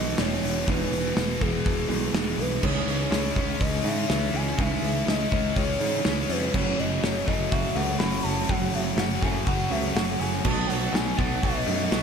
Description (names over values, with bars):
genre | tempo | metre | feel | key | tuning
rock, shoegaze and dream pop | 123 BPM | 4/4 | straight | E major | A4 = 445 Hz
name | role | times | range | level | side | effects
pure breathy sine lead | melody | 0.0-12.0 s | G#4 to B5 | -31 LUFS | left 1 dB | chorus, tape echo
mellow electric guitar | riff | 0.0-12.0 s | F#2 to D#4 | -31 LUFS | right 14 dB | reverse reverb
thick fuzz guitar | riff | 0.0-12.0 s | E2 to C#4 | -32 LUFS | left 13 dB | distortion, analog chorus
tight distorted guitar | riff | 0.0-12.0 s | E2 to C#4 | -32 LUFS | equal | distortion
modern bright picked electric bass | bass | 0.0-12.0 s | E1 to G#2 | -30 LUFS | equal | none
loose indie drum kit | drums | 0.2-12.0 s | crash cymbal, hi-hat, kick drum, snare drum | -28 LUFS | equal | none
electric guitar through a small old amp | arpeggios | 6.5-12.0 s | F#3 to F#4 | -35 LUFS | right 1 dB | wide subtle chorus, tape echo
room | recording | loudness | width
light reverb, small room ambience | none | -23 LUFS | side -6 dB against mid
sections
0.0-12.0 A section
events
none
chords
0.0 Emaj7; 2.6 C#madd9; 6.5 F#m; 10.4 B7